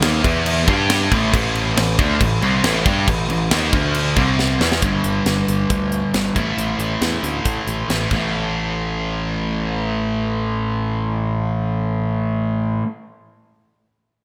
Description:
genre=hard rock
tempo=137 BPM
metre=4/4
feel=straight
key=unclear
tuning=A4 = 440 Hz
part: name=sludgy distorted guitar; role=riff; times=0.0-12.9 s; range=G2 to G4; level=-22 LUFS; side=equal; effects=overdrive
part: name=modern bright picked electric bass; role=bass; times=0.0-12.8 s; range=G1 to A2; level=-26 LUFS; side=equal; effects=none
part: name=tight metal drum kit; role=drums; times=0.0-8.2 s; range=crash cymbal, hi-hat, kick drum, snare drum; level=-23 LUFS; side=equal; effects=gated reverb
room=moderate lush hall reverb, RT60 1.7 s, small room ambience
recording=bright 1980s-style digital production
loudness=-19 LUFS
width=mono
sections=0.0-4.8 A section; 4.8-8.3 B section; 8.3-11.8 C section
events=drum fill 4.4-4.8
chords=0.2 E5; 0.7 G5; 1.1 A5; 3.7 D5; 4.2 C5; 4.6 E5; 4.8 G5; 6.4 A5

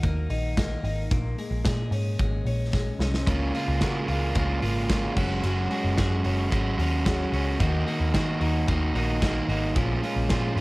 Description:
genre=jangly indie pop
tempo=111 BPM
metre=4/4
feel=straight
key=unclear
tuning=A4 = 440 Hz
part: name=twelve-string electric guitar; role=arpeggios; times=0.0-10.6 s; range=Bb2 to Ab4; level=-32 LUFS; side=left 2 dB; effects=analog delay
part: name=vintage muted picked electric bass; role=bass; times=0.0-10.6 s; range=Gb1 to Eb3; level=-27 LUFS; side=equal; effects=none
part: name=big rock drum kit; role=drums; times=0.0-10.6 s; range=crash cymbal, hi-hat, kick drum, ride cymbal, snare drum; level=-29 LUFS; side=equal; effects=cassette tape
part: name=overdriven electric guitar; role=accompaniment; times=3.3-10.6 s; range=Bb2 to Gb4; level=-27 LUFS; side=right 2 dB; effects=none
room=studio ambience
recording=home recording on cassette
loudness=-23 LUFS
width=side -22 dB against mid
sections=0.0-10.6 A section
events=drum fill 2.7-3.3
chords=0.0 Ebm; 1.1 Bbm7; 3.3 Db6; 5.2 Gbsus2; 7.6 Ebm; 9.8 Bbm7

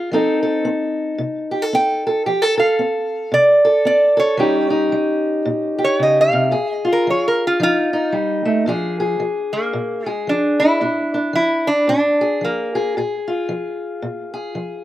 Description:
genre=acoustic country blues, solo or duo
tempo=112 BPM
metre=4/4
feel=swing 60% on 8ths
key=Bb mixolydian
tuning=A4 = 440 Hz
part: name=fingerpicked steel-string acoustic guitar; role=accompaniment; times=0.0-14.8 s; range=Bb2 to A4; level=-19 LUFS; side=equal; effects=slapback echo
part: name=lap resonator guitar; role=melody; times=1.7-12.9 s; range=Bb3 to G5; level=-16 LUFS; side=right 1 dB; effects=none
room=little or no reverb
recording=recorded outdoors, with no room sound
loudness=-16 LUFS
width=side -14 dB against mid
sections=0.0-8.7 A section; 8.7-14.8 B section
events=resonator guitar played with a steel bar solo 0.0-8.7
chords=0.1 F7; 4.4 Eb7; 6.5 Bb5; 7.6 F7; 8.7 Bb7

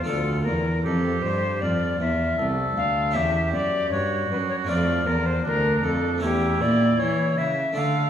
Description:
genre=classical, baroque-style sonata movement with continuo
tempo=78 BPM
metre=4/4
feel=rubato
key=unclear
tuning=A4 = 439 Hz
part: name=mellow alto recorder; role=melody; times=0.0-8.1 s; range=G4 to F5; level=-26 LUFS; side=left 4 dB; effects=none
part: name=clear oboe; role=second line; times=0.0-8.1 s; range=D4 to A4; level=-29 LUFS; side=right 4 dB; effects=none
part: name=harpsichord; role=accompaniment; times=0.0-8.1 s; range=C2 to A4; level=-27 LUFS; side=equal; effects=none
part: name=dark cello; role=bass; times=0.0-8.1 s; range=C2 to E3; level=-26 LUFS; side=right 1 dB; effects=none
room=wet recital hall reverb, RT60 1.4 s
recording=heard from further back in the room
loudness=-21 LUFS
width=side -9 dB against mid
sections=0.0-8.1 A section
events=none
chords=0.1 Dm; 3.1 C#dim/E; 4.7 Dm; 6.2 A/E

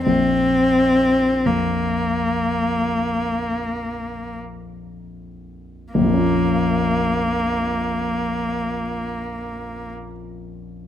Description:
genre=classical, romantic duo for cello and grand piano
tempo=37-44 BPM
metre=4/4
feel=rubato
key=Bb minor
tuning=A4 = 441 Hz
part: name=rich cello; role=melody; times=0.0-9.9 s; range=Bb3 to C4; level=-20 LUFS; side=equal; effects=none
part: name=warm concert grand piano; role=accompaniment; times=0.0-10.9 s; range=Bb1 to F4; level=-24 LUFS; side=left 2 dB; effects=none
room=moderate recital hall reverb, RT60 1.5 s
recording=close, detailed microphones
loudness=-18 LUFS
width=side -10 dB against mid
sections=0.0-6.0 A section; 6.0-10.9 B section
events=slowing down 0.0-6.0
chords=0.1 Bb5; 6.0 Bbm

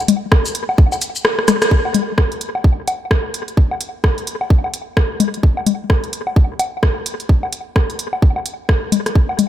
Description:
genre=techno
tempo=129 BPM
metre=4/4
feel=swing 60% on 16ths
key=none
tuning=none
part: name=garage drum kit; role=drums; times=0.1-9.5 s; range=hi-hat, rim click, shaker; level=-20 LUFS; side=equal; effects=analog delay
part: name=congas and woodblock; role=percussion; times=0.1-9.5 s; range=none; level=-19 LUFS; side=left 5 dB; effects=tape echo
part: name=electronic kick drum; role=drums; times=0.3-9.3 s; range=none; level=-13 LUFS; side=equal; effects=none
room=light reverb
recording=echo-heavy mix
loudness=-15 LUFS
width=side -12 dB against mid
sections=0.0-1.7 A section; 1.7-9.5 B section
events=kick drops out 1.2-1.7; drum fill 1.4-1.7; band accent 1.6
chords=none

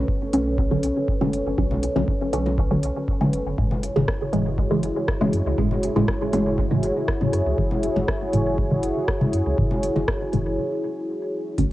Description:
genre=dub techno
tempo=120 BPM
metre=4/4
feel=straight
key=unclear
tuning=A4 = 440 Hz
part: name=dark analog pad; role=sustained chords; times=0.0-11.7 s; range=B3 to C#5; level=-26 LUFS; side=equal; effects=chorus, sidechain pumping
part: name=filtered dub chord stab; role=stabs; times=0.0-11.7 s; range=A2 to C#4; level=-24 LUFS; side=equal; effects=phaser, sidechain pumping, dub echo
part: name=pure sine sub bass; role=bass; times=0.0-11.7 s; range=F#1 to F#2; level=-28 LUFS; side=equal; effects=tube saturation, sidechain pumping
part: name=electronic kick drum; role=drums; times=0.1-11.7 s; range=none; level=-26 LUFS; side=equal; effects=cassette tape
part: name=deep house drum kit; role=drums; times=0.3-11.7 s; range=hi-hat, rim click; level=-30 LUFS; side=equal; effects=cassette tape
part: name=congas and bongos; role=percussion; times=1.2-10.1 s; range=none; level=-32 LUFS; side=left 1 dB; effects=sidechain pumping on perc, cassette tape, dub echo
room=light reverb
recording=home recording on cassette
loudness=-20 LUFS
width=side -16 dB against mid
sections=0.0-11.6 A section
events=filter sweep on synth stab 0.0-11.6; break 10.6-11.6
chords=0.0 Bm9; 3.6 F#m9

